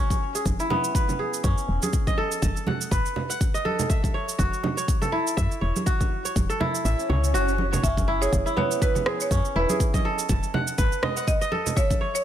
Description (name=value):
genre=afro house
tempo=122 BPM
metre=4/4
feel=swing 56% on 16ths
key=F# dorian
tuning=A4 = 440 Hz
part: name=kora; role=arpeggios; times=0.0-12.2 s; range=B3 to A5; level=-27 LUFS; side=equal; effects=sidechain pumping, digital delay
part: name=electronic kick drum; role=drums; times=0.1-12.0 s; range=none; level=-24 LUFS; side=equal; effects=studio reverb
part: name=electronic shaker and rim click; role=drums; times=0.1-12.2 s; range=none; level=-31 LUFS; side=right 5 dB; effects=studio reverb
part: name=congas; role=percussion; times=0.1-12.0 s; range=none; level=-30 LUFS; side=right 3 dB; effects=none
part: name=woody FM bass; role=bass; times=0.5-10.9 s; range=E1 to F#2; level=-25 LUFS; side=equal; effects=sidechain pumping
part: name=swell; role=sound effects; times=7.0-7.8 s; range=none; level=-31 LUFS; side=left 1 dB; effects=none
part: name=marimba with medium hard mallets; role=melody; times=7.8-12.2 s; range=B4 to E5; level=-28 LUFS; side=right 2 dB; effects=digital delay
room=small room ambience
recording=none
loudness=-22 LUFS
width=side -10 dB against mid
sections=0.0-12.2 A section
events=kick drops out 6.8-7.8; swell 7.0-7.8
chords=0.0 C#m7/F#; 1.9 B7/F#; 3.9 F#m7; 7.8 C#m7/F#; 9.8 B7/F#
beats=0.46 0.95 1.44 | 1.93 2.42 2.92 3.41 | 3.90 4.39 4.88 5.37 | 5.87 6.36 6.85 7.34 | 7.83 8.32 8.82 9.31 | 9.80 10.29 10.78 11.28 | 11.77